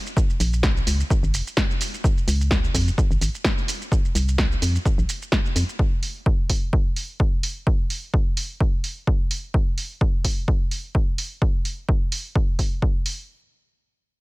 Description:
piano house; 128 BPM; 4/4; swing 54% on 16ths; A4 = 440 Hz
punchy analog drum machine; drums; 0.1-13.2 s; hi-hat, shaker, snare drum; -27 LUFS; right 1 dB
electronic kick drum; drums; 0.2-12.9 s; -21 LUFS; equal
organ-like FM bass; bass; 0.4-5.6 s; F1 to F2; -21 LUFS; equal; sidechain pumping
little or no reverb; -20 LUFS; side -22 dB against mid
0.0-13.3 A section

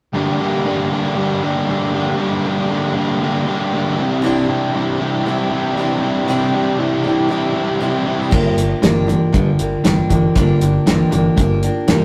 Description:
classic rock; 118 BPM; 4/4; straight; G dorian; A4 = 437 Hz
biting overdriven guitar; riff; 0.1-12.0 s; G2 to G4; -21 LUFS; equal
overdriven semi-hollow guitar; riff; 0.1-12.0 s; G2 to E4; -23 LUFS; equal
picked steel-string acoustic guitar; accompaniment; 4.2-12.0 s; G2 to G4; -22 LUFS; equal
modern bright picked electric bass; bass; 8.3-12.0 s; G1 to G2; -24 LUFS; equal
damped 70s drum kit; drums; 8.3-12.0 s; crash cymbal, hi-hat, kick drum, snare drum; -20 LUFS; equal
wet stone room reverb, RT60 1.1 s; rough rehearsal-room recording; -17 LUFS; mono
0.1-8.3 A section; 8.3-12.0 B section
0.1 Gm; 4.0 Cadd9; 8.3 Gm7

